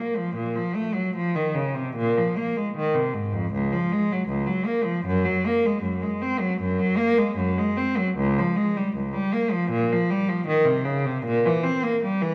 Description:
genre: classical, baroque-style suite movement for unaccompanied cello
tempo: 78 BPM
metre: 4/4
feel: rubato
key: unclear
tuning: A4 = 440 Hz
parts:
  - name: rich cello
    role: solo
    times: 0.0-12.3 s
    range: Db2 to C4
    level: -24 LUFS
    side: equal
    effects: none
room: wet recital hall reverb, RT60 1.8 s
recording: worn, warbling old tape, cassette tape, warbly pitch drift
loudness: -24 LUFS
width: mono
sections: 0.0-12.3 A section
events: none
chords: none

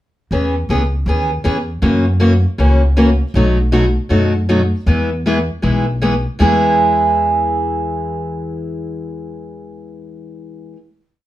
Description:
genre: acoustic string swing (jazz manouche)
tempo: 158 BPM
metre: 4/4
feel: swing 64% on 8ths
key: E major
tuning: A4 = 436 Hz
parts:
  - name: picked steel-string acoustic guitar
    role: accompaniment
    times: 0.3-10.8 s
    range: B2 to G#4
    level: -16 LUFS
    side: equal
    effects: none
  - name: upright bass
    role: bass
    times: 0.3-10.7 s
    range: B1 to F#2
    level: -17 LUFS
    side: equal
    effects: none
room: wet studio reverb, RT60 0.6 s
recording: heard from further back in the room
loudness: -13 LUFS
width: side -14 dB against mid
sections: 0.3-6.4 A section; 6.4-9.4 final chord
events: none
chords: 0.3 E6; 1.8 F#7; 3.4 B7; 4.9 E

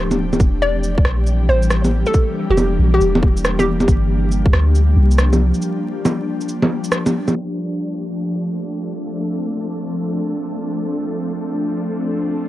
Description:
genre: future garage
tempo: 138 BPM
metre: 4/4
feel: swing 65% on 16ths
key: D minor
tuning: A4 = 440 Hz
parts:
  - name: ethereal airy pad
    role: sustained chords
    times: 0.0-12.5 s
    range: E3 to A4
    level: -22 LUFS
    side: left 1 dB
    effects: ensemble chorus, built-in reverb, sidechain pumping
  - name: soft 808-style bass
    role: bass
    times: 0.0-5.5 s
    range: D1 to D2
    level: -16 LUFS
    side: equal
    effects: transformer saturation, sidechain pumping
  - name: electronic bongos, shaker and rim click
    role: drums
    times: 0.1-7.3 s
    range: none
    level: -19 LUFS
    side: equal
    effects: low-pass filter on perc, vintage 12-bit sampler grit, low-pass filter on snare, low-pass filter on room
  - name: electronic kick drum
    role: drums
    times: 0.4-4.5 s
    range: none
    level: -15 LUFS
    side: equal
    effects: vintage 12-bit sampler grit
  - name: hollow square pluck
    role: melody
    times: 0.6-3.9 s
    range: G4 to D5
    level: -21 LUFS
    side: equal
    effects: chorus, analog delay
  - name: flickering grainy texture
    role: texture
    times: 8.3-12.5 s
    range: A3 to A4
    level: -32 LUFS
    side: right 1 dB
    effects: built-in reverb
room: digital ambience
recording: dry, gritty hardware recording, vinyl crackle, low-pass filter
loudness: -16 LUFS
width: side -15 dB against mid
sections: 0.0-7.4 A section; 7.4-12.5 B section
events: break 5.6-7.4; band accent 6.9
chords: 0.4 Em7b5; 3.9 Gm7; 7.4 Dm7

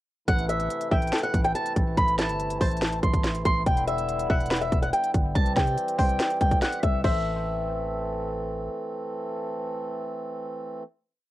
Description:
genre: hip hop, trap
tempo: 142 BPM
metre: 4/4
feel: half-time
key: A minor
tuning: A4 = 440 Hz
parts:
  - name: fingerpicked swing-style acoustic guitar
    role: melody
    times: 0.3-8.3 s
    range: E5 to C6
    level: -27 LUFS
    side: equal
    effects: cassette tape
  - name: hand-pumped harmonium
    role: sustained chords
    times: 0.3-10.8 s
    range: C3 to A4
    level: -32 LUFS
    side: right 1 dB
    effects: cassette tape
  - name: growling 808-style bass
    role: bass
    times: 0.3-8.7 s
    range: E1 to C3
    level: -30 LUFS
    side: equal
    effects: none
  - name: trap drum kit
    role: drums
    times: 0.3-7.1 s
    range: crash cymbal, hi-hat, kick drum, snare drum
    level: -25 LUFS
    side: equal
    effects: cassette tape
  - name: hollow square pluck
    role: second line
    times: 0.9-8.3 s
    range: A4 to E5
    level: -35 LUFS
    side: left 2 dB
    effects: chorus, cassette tape, tape echo
room: little or no reverb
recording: home recording on cassette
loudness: -23 LUFS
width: side -15 dB against mid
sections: 0.3-7.0 hook; 7.0-10.4 final chord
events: none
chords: 0.3 Am; 3.7 Em7; 5.4 C; 7.0 Am

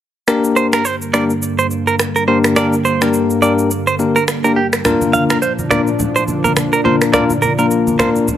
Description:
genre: afrobeats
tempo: 105 BPM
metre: 4/4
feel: swing 58% on 16ths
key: G minor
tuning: A4 = 438 Hz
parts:
  - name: bell-like tine electric piano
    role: accompaniment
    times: 0.3-8.3 s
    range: Bb3 to Bb4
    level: -16 LUFS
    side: left 4 dB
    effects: none
  - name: lush unison pad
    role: sustained chords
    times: 0.7-8.4 s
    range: G2 to D4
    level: -20 LUFS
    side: right 1 dB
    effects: chorus
  - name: electronic rim click, shaker and finger snaps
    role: drums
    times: 0.3-8.4 s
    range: none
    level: -20 LUFS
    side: right 1 dB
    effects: none
  - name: direct-recorded clean electric guitar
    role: riff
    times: 0.6-8.1 s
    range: G4 to F5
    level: -18 LUFS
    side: right 4 dB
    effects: digital delay
  - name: congas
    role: percussion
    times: 4.9-8.4 s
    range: none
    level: -22 LUFS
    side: right 2 dB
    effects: none
room: light reverb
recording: none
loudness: -12 LUFS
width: side -10 dB against mid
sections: 0.3-8.4 A section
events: none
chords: 0.3 Gm; 4.8 Bb

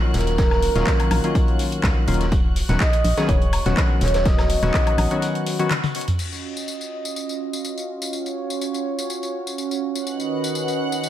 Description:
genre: deep house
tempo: 124 BPM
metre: 4/4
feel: swing 54% on 16ths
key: Eb minor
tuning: A4 = 440 Hz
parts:
  - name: warm analog keys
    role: stabs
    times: 0.0-5.7 s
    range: Eb3 to Ab4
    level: -24 LUFS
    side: left 2 dB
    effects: chorus, sidechain pumping, digital delay
  - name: clear studio violin section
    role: texture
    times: 0.0-6.2, 10.1-11.1 s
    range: Gb4 to Gb6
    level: -35 LUFS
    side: equal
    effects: none
  - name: breathy flute-like synth lead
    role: melody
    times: 0.1-5.2 s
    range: Bb4 to D#5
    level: -25 LUFS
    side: right 2 dB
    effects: lush chorus, digital delay
  - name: organ-like FM bass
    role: bass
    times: 0.1-5.1 s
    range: Eb1 to Db2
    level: -22 LUFS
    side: equal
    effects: sidechain pumping
  - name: house drum kit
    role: drums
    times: 0.1-11.1 s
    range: crash cymbal, handclaps, hi-hat, tambourine, toms, woodblock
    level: -28 LUFS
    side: left 2 dB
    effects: none
  - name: vintage drum kit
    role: drums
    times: 0.1-6.2 s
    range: hi-hat, snare drum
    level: -34 LUFS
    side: equal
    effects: sidechain pumping on hats, high-pass filter on hats, high-pass filter on snare, high-pass filter on room
  - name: electronic kick drum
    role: drums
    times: 0.4-4.8 s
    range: none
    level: -20 LUFS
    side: equal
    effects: none
  - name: warm analog pad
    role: sustained chords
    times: 6.2-11.1 s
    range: D#3 to Eb5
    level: -25 LUFS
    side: right 4 dB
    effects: chorus, sidechain pumping
room: light reverb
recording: none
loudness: -19 LUFS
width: side -12 dB against mid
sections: 0.0-6.2 A section; 6.2-11.1 B section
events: break 5.2-6.2; drum fill 5.7-6.2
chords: 0.0 Ebm9; 2.3 Badd9/D#; 6.2 Ebm9; 10.1 Badd9/D#

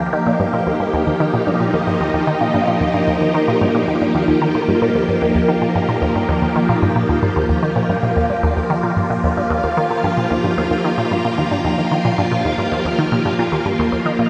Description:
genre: ambient, sequencer-driven space music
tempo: 112 BPM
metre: 4/4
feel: straight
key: unclear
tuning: A4 = 440 Hz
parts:
  - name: phased string machine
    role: sustained chords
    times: 0.0-14.3 s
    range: F3 to G4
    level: -20 LUFS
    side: equal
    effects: ensemble chorus, phaser
  - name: resonant blip pluck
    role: riff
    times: 0.0-14.2 s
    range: Eb2 to Eb3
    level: -21 LUFS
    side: equal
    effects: phaser, analog delay
room: wet lush hall reverb, RT60 2.5 s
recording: none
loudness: -17 LUFS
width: mono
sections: 0.0-14.3 A section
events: none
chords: 0.0 Eb

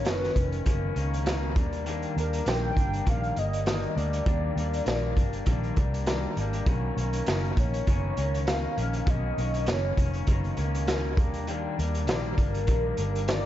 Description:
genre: indie pop, bedroom pop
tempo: 100 BPM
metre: 4/4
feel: swing 55% on 16ths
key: Eb major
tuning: A4 = 440 Hz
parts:
  - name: warm velvety synth lead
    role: melody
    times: 0.0-13.5 s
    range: Bb4 to G5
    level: -33 LUFS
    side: equal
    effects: analog chorus, analog delay
  - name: electric guitar through a small old amp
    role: accompaniment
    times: 0.0-13.5 s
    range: B2 to D4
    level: -32 LUFS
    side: left 3 dB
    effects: wide subtle chorus, vibrato effect, analog delay
  - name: vintage muted fingered electric bass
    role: bass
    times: 0.0-13.5 s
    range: F1 to Eb2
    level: -29 LUFS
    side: equal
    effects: none
  - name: raw garage drum kit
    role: drums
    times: 0.0-13.4 s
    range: hi-hat, kick drum, snare drum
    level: -28 LUFS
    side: equal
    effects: none
room: light reverb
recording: echo-heavy mix, nothing above 7.7 kHz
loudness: -25 LUFS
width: side -12 dB against mid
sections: 0.0-13.5 A section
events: none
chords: 0.0 Bmaj9; 1.6 Ebmaj7; 6.7 Bmaj9; 11.2 Ebmaj7

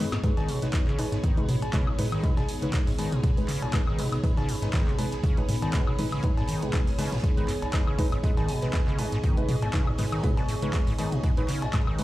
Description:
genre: acid house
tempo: 120 BPM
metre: 4/4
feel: swing 55% on 16ths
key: G# minor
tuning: A4 = 445 Hz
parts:
  - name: string machine, full ensemble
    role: sustained chords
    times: 0.0-12.0 s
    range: B3 to G#5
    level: -37 LUFS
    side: left 1 dB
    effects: ensemble chorus, sidechain pumping
  - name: acid bass, square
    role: riff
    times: 0.0-12.0 s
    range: G#1 to D#3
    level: -30 LUFS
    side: equal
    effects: overdrive, tape echo
  - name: deep mellow chord stab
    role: stabs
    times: 0.0-12.0 s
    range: G#3 to B4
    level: -34 LUFS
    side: equal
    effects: chorus, tape echo
  - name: warbly tape-like pad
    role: texture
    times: 0.0-12.0 s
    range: G#4 to C#6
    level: -37 LUFS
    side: right 1 dB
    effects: chorus, built-in reverb, sidechain pumping
  - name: punchy analog drum machine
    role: drums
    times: 0.1-12.0 s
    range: cowbell, handclaps, hi-hat, snare drum, toms, woodblock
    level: -33 LUFS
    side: left 1 dB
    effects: none
  - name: vintage drum kit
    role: drums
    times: 0.1-12.0 s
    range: hi-hat, snare drum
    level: -47 LUFS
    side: right 2 dB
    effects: none
  - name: electronic kick drum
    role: drums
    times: 0.2-11.8 s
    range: none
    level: -26 LUFS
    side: equal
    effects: none
room: light reverb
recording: played on a big sound system in a bare room, large studio reverb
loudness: -24 LUFS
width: side -16 dB against mid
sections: 0.0-12.0 A section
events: break 0.0; drum fill 0.0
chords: 0.0 G#m

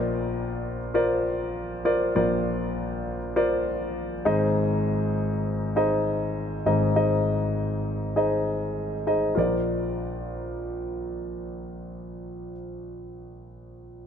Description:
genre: pop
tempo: 100 BPM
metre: 4/4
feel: swing 56% on 16ths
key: Bb mixolydian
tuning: A4 = 443 Hz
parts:
  - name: warm concert grand piano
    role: solo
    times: 0.0-14.1 s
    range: Ab1 to Eb5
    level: -24 LUFS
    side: left 1 dB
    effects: none
room: moderate plate reverb, RT60 3.1 s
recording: none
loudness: -24 LUFS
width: side -8 dB against mid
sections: 0.0-9.4 A section; 9.4-11.8 B section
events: none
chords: 0.0 Bbadd9; 4.3 Ab; 9.4 Bbadd9

